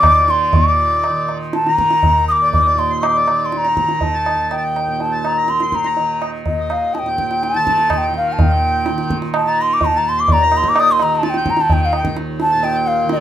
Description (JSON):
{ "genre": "indian classical, Hindustani", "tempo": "124 BPM", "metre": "4/4", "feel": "straight", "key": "Eb raga yaman", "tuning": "A4 = 440 Hz", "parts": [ { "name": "hollow bansuri", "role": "melody", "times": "0.0-13.2 s", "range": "D5 to Eb6", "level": "-15 LUFS", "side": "left 1 dB", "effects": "none" }, { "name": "hand-pumped harmonium", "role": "second line", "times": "0.0-13.2 s", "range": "D5 to C6", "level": "-26 LUFS", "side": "left 1 dB", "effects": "none" }, { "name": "tanpura", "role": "drone", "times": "0.0-13.2 s", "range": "Eb2 to Eb3", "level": "-24 LUFS", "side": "right 2 dB", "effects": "none" }, { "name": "tabla", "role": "percussion", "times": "0.0-13.2 s", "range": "none", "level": "-20 LUFS", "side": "right 1 dB", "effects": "none" } ], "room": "light reverb", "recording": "minimal, uncompressed stereo recording", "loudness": "-14 LUFS", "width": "side -11 dB against mid", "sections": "0.5-8.4 A section; 8.4-13.2 B section", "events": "speeding up 0.0-13.2", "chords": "none" }